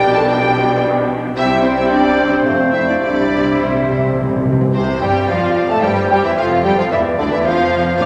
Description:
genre	quick classical-period movement for symphony orchestra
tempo	104-113 BPM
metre	3/4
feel	rubato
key	F major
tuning	A4 = 440 Hz
part	warm studio violin section	melody	0.0-8.1 s	C5 to A5	-27 LUFS	equal	none
part	mellow clarinet	second line	0.0-8.1 s	A4 to D5	-24 LUFS	equal	none
part	mellow hollow flute section	second line	0.0-8.1 s	C5 to D6	-24 LUFS	equal	none
part	rich chamber violin section	second line	0.0-8.1 s	C4 to A5	-26 LUFS	equal	none
part	warm bassoon	accompaniment	0.0-8.1 s	C3 to A3	-24 LUFS	equal	none
part	warm studio viola section	accompaniment	0.0-8.1 s	C3 to E4	-24 LUFS	equal	none
part	mellow French horn section	sustained chords	0.0-8.1 s	C3 to A4	-24 LUFS	equal	none
part	dark studio double bass section	bass	0.0-8.1 s	E1 to D2	-31 LUFS	equal	none
part	warm chamber cello section	bass	0.0-8.1 s	C2 to C3	-24 LUFS	equal	none
part	timpani	percussion	3.0-4.7 s	C3	-22 LUFS	equal	none
room	wet concert hall reverb, RT60 2.3 s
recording	none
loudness	-15 LUFS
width	mono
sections	0.0-4.7 A section; 4.7-8.1 B section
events	timpani fill 3.0-4.7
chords	0.0 G7/B; 1.4 C5; 2.5 F; 3.0 C; 4.7 F; 5.8 C/G; 6.4 F

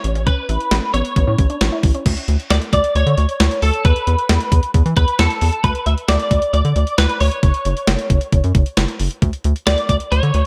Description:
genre	synth-pop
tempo	134 BPM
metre	4/4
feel	straight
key	unclear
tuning	A4 = 440 Hz
part	twelve-string electric guitar	melody	0.0-10.5 s	A4 to E5	-23 LUFS	equal	ensemble chorus, tape echo
part	resonant blip pluck	arpeggios	0.0-2.0 s	B3 to E4	-30 LUFS	equal	phaser, tape echo
part	rubbery square bass	bass	0.0-10.4 s	F#1 to E3	-19 LUFS	equal	none
part	gated 80s digital drum machine	drums	0.0-10.4 s	crash cymbal, hi-hat, kick drum, snare drum	-20 LUFS	equal	gated reverb, gated reverb snare
room	moderate spring reverb, RT60 1.6 s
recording	echo-heavy mix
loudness	-17 LUFS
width	mono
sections	0.0-2.1 A section; 2.1-10.5 B section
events	none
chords	0.0 A; 2.1 Aadd11/D (rootless); 3.8 Esus4; 5.6 Bm/D; 7.4 F#5; 9.2 Aadd11/D (rootless)

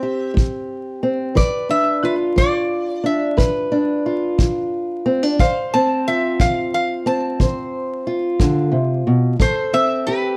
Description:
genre	acoustic country blues, solo or duo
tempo	60 BPM (dotted quarters)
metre	12/8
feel	straight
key	unclear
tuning	A4 = 440 Hz
part	metal-body resonator slide guitar	melody	0.0-10.4 s	B4 to A5	-23 LUFS	equal	slapback echo
part	fingerpicked old ladder-braced acoustic guitar	accompaniment	0.0-10.4 s	A2 to C5	-21 LUFS	equal	none
part	kick drum	drums	0.4-9.6 s	none	-20 LUFS	equal	none
room	moderate studio reverb, RT60 0.7 s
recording	vinyl crackle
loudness	-19 LUFS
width	mono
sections	0.0-10.4 A section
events	none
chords	0.0 Am7; 1.4 E5; 5.4 Dm7; 9.4 Am7

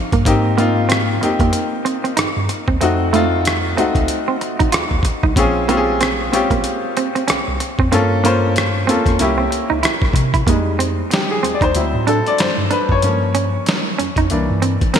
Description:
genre	R&B, neo-soul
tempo	94 BPM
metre	4/4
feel	swing 60% on 16ths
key	unclear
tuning	A4 = 440 Hz
part	clear baby grand piano	accompaniment	0.0-15.0 s	E3 to F5	-18 LUFS	left 2 dB	none
part	semi-hollow electric guitar	second line	0.1-15.0 s	A3 to F4	-22 LUFS	right 7 dB	lush chorus
part	mellow tine electric piano	bass	0.1-15.0 s	Bb1 to C3	-21 LUFS	equal	medium stereo tremolo
part	boom bap sampler-style drum kit	drums	0.1-15.0 s	hi-hat, kick drum, rim click, snare drum	-19 LUFS	equal	gated reverb
room	moderate lush hall reverb, RT60 2.8 s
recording	bright 1980s-style digital production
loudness	-14 LUFS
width	side -8 dB against mid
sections	0.3-10.5 A section; 10.5-15.0 B section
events	grand piano solo 10.5-15.0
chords	0.3 Abmaj7; 2.8 F7b9; 5.4 Bbm9; 7.9 Gm7b5; 9.2 C7b9; 10.5 Fm7; 11.7 D7; 13.0 Gm7b5; 14.3 C7

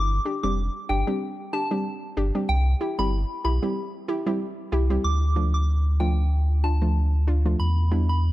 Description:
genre	dancehall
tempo	94 BPM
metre	4/4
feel	swing 56% on 16ths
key	D dorian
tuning	A4 = 439 Hz
part	soft synth bell	melody	0.0-8.2 s	G5 to D6	-31 LUFS	left 1 dB	chorus, phaser, tape echo
part	warm sub bass	bass	0.0-8.3 s	F1 to E2	-21 LUFS	equal	none
part	hollow square pluck	accompaniment	0.3-8.1 s	F3 to G4	-28 LUFS	equal	chorus
room	little or no reverb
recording	dark, warm production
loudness	-22 LUFS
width	side -16 dB against mid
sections	0.0-5.0 A section; 5.0-8.3 B section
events	none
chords	0.0 Gsus4; 2.5 C; 5.0 Dm; 7.6 Em7

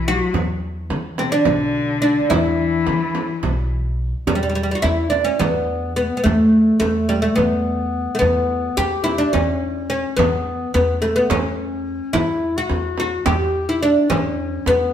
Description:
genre	Turkish makam ensemble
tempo	214 BPM (eighths)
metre	7/8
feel	straight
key	E makam ussak, E makam huseyni from 4.3 s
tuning	A4 = 440 Hz
part	oud	melody	0.0-14.9 s	G3 to G4	-19 LUFS	equal	none
part	clear cello	second line	0.0-3.7 s	C3 to F#3-30c	-25 LUFS	left 5 dB	none
part	dark clarinet	second line	0.0-14.9 s	G3 to G4	-26 LUFS	left 4 dB	none
part	upright bass	bass	0.0-14.9 s	B1 to E3	-25 LUFS	equal	none
part	frame drum	percussion	0.3-14.8 s	none	-24 LUFS	right 3 dB	none
room	wet stone room reverb, RT60 1.2 s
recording	band playing live in one room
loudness	-17 LUFS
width	side -10 dB against mid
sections	0.0-4.3 A section; 4.3-14.9 B section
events	none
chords	none

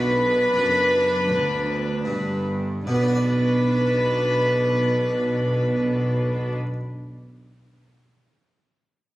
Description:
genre	classical, baroque-style concerto movement with solo episodes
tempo	72-85 BPM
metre	4/4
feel	straight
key	B minor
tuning	A4 = 439 Hz
part	rich chamber violin section	melody	0.0-6.5 s	B5	-30 LUFS	left 1 dB	none
part	rich violin	melody	0.0-6.5 s	B4	-24 LUFS	equal	none
part	rich chamber violin section	second line	0.0-6.5 s	B4	-33 LUFS	equal	none
part	harpsichord	accompaniment	0.0-6.8 s	D2 to D5	-30 LUFS	right 1 dB	none
part	warm chamber viola section	accompaniment	0.0-6.5 s	D4	-31 LUFS	equal	none
part	rich chamber cello section	bass	0.0-6.5 s	D2 to B2	-27 LUFS	right 1 dB	none
part	rich chamber double bass section	bass	0.0-6.5 s	F#1 to D2	-28 LUFS	equal	none
room	light reverb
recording	recorded on a phone in the room, club reverb, compression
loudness	-19 LUFS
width	side -16 dB against mid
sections	0.0-2.9 A section; 2.9-6.2 B section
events	slowing down 0.0-2.9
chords	0.0 Bm

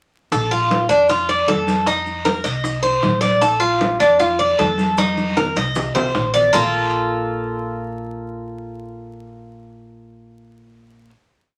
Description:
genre	latin, Cuban son and guajira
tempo	155 BPM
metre	4/4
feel	straight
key	Bb major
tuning	A4 = 436 Hz
part	Cuban tres	arpeggios	0.3-11.1 s	Bb3 to Eb5	-20 LUFS	equal	none
part	upright bass	bass	0.3-11.1 s	Bb1 to F2	-31 LUFS	equal	none
part	bongos	percussion	0.3-6.6 s	none	-29 LUFS	equal	none
part	congas	percussion	0.3-6.6 s	none	-26 LUFS	equal	none
part	guiro	percussion	0.3-6.6 s	none	-35 LUFS	equal	none
part	maracas	percussion	0.3-6.6 s	none	-42 LUFS	equal	none
room	wet studio ambience, RT60 0.4 s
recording	vinyl crackle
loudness	-18 LUFS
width	mono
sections	0.3-6.5 montuno (vamp); 6.5-9.6 final chord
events	drum fill 5.0-6.5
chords	0.3 Bbmaj7; 1.9 F7sus4; 3.4 Bbmaj7; 5.0 F7sus4; 6.5 Bb5

